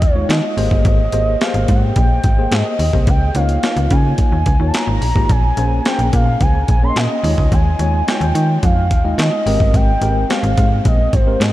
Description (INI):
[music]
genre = early-eighties boogie funk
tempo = 108 BPM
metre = 4/4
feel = straight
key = unclear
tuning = A4 = 443 Hz
[part]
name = gliding portamento lead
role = melody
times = 0.0-11.5 s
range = C5 to C6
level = -21 LUFS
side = equal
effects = chorus, tape echo
[part]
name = slap-like FM bass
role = bass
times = 0.0-11.5 s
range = G1 to Eb3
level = -17 LUFS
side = equal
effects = none
[part]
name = breakbeat sampler-style drum kit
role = drums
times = 0.0-11.5 s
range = handclaps, hi-hat, kick drum, snare drum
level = -17 LUFS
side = equal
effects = none
[part]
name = tine electric piano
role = accompaniment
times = 0.2-11.5 s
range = Ab3 to Eb5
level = -22 LUFS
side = left 1 dB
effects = overdrive, fast stereo tremolo
[sound]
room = light reverb, digital ambience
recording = none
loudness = -13 LUFS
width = side -15 dB against mid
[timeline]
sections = 0.0-11.5 A section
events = none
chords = 0.0 Eb9sus4; 0.6 Abmaj9; 3.1 Db69; 5.3 Bbm9; 7.2 Eb9sus4; 9.5 Abmaj9